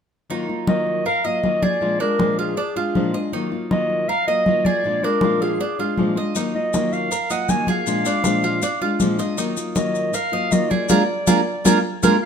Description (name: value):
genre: latin, Cuban son and guajira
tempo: 159 BPM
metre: 4/4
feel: straight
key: Eb harmonic minor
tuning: A4 = 440 Hz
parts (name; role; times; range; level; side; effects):
- nylon-string guitar; accompaniment; 0.3-12.2 s; Bb2 to F4; -23 LUFS; left 3 dB; none
- Cuban tres; arpeggios; 0.3-12.2 s; D4 to Eb5; -24 LUFS; right 7 dB; none
- congas; percussion; 0.3-12.1 s; none; -22 LUFS; left 1 dB; none
- mellow clarinet; melody; 0.7-12.3 s; Ab4 to Ab5; -22 LUFS; equal; none
- maracas; percussion; 6.4-12.1 s; none; -30 LUFS; left 7 dB; none
room: moderate large studio reverb, RT60 1.2 s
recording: minimal, uncompressed stereo recording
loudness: -18 LUFS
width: side -7 dB against mid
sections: 0.3-12.3 A section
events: band accent 10.9-12.3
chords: 0.3 Ebmadd9; 1.8 Bb7; 3.3 Ebmadd9; 4.8 Bb7; 6.4 Ebmadd9; 7.9 Bb7; 9.4 Ebmadd9; 10.9 Bb7